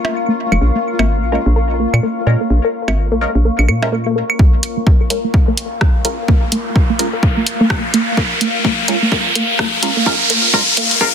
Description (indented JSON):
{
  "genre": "minimal techno",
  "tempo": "127 BPM",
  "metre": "4/4",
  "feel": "swing 59% on 16ths",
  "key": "Bb minor",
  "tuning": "A4 = 439 Hz",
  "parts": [
    { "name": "percussion blips and claves", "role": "percussion", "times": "0.0-4.4 s", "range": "none", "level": "-20 LUFS", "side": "right 4 dB", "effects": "overdrive, studio reverb, tape echo" },
    { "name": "deep dark ambient pad", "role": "texture", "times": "0.0-11.1 s", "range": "Bb4 to Db6", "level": "-23 LUFS", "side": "left 3 dB", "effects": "chorus, built-in reverb, sidechain pumping" },
    { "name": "pulsing gated texture", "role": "texture", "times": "0.0-4.4 s", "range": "Db4 to F4", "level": "-30 LUFS", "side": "left 3 dB", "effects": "chorus, built-in reverb, sidechain pumping" },
    { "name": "resonant blip pluck", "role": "riff", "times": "0.3-11.1 s", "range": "Bb3 to Bb4", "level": "-20 LUFS", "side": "equal", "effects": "phaser, sidechain pumping, digital delay" },
    { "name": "hollow knocking FM bass", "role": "bass", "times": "0.5-4.2 s", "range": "F1 to Bb2", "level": "-14 LUFS", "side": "equal", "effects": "sidechain pumping" },
    { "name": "filtered dub chord stab", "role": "stabs", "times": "1.3-11.1 s", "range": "Ab3 to Bb4", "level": "-22 LUFS", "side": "right 2 dB", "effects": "phaser, lush chorus, tape echo" },
    { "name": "electronic kick drum", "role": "drums", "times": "4.4-11.1 s", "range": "none", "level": "-13 LUFS", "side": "equal", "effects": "studio reverb" },
    { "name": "riser", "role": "sound effects", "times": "6.2-11.1 s", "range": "none", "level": "-16 LUFS", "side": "equal", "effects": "none" },
    { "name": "punchy analog drum machine", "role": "drums", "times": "4.6-11.0 s", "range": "hi-hat, rim click", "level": "-18 LUFS", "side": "right 1 dB", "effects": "studio reverb, soft clipping on snare" }
  ],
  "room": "light reverb",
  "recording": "dense, heavily limited modern master, high-pass filter",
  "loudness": "-12 LUFS",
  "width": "side -8 dB against mid",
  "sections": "0.0-4.4 A section; 4.4-11.1 B section",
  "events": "filter sweep on synth pluck 0.0-4.4, 4.4-11.1; build-up 4.4-11.1; filter sweep on synth stab 4.4-11.1; filter sweep 4.4-11.1; riser 6.2-11.1",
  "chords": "0.0 Bbm7; 4.4 Bbm"
}